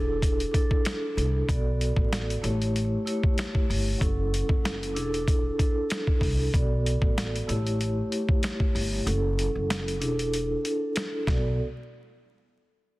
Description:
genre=hip hop, boom-bap hip-hop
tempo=95 BPM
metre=4/4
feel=swing 55% on 16ths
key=B minor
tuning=A4 = 439 Hz
part: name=vibraphone with soft mallets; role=accompaniment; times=0.0-11.6 s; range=F#3 to D5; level=-29 LUFS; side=equal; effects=cassette tape, high-pass filter, low-pass filter
part: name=upright bass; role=bass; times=0.0-11.6 s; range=E1 to C2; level=-28 LUFS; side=equal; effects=none
part: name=boom bap sampler-style drum kit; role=drums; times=0.2-11.4 s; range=hi-hat, kick drum, snare drum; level=-26 LUFS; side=equal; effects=none
room=small room reverb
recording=dense, heavily limited modern master, vinyl crackle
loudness=-24 LUFS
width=side -19 dB against mid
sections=0.0-1.5 A section; 1.5-11.6 B section; 11.6-13.0 C section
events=filter sweep on vibraphone 1.5-11.6; kick muted 9.1-11.6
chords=0.0 E7sus4; 1.5 Bm7; 2.4 A7; 4.0 F#m7; 5.0 E7sus4; 6.5 Bm7; 7.5 A7; 9.1 F#m7; 10.0 E7sus4; 11.3 Bm7; 11.6 N.C.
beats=0.22 0.85 | 1.48 2.12 2.75 3.38 | 4.01 4.64 5.27 5.90 | 6.54 7.17 7.80 8.43 | 9.06 9.69 10.33 10.96 | 11.59

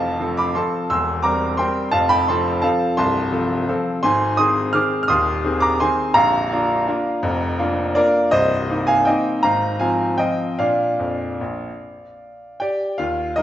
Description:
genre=classical, piano waltz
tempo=143-183 BPM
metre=3/4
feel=rubato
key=unclear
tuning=A4 = 440 Hz
part: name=bright grand piano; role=solo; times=0.0-13.4 s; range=Bb0 to F6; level=-17 LUFS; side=equal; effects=none
room=wet recital hall reverb, RT60 1.7 s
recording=nothing above 7.6 kHz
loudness=-17 LUFS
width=side -12 dB against mid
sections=0.0-13.0 A section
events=none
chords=0.0 F; 0.9 C7/E; 1.9 F; 4.0 Ab; 6.2 Bb; 8.3 Cm7; 9.4 Fm/Ab; 10.6 Bb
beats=0.21 0.56 | 0.90 1.24 1.59 | 1.93 2.28 2.64 | 2.98 3.33 3.67 | 4.02 4.36 4.72 | 5.08 5.44 5.81 | 6.15 6.50 6.87 | 7.23 7.59 7.96 | 8.32 8.69 9.07 | 9.44 9.79 10.18 | 10.58 10.98 11.39 | 11.80 12.19 12.60 | 13.00 13.37

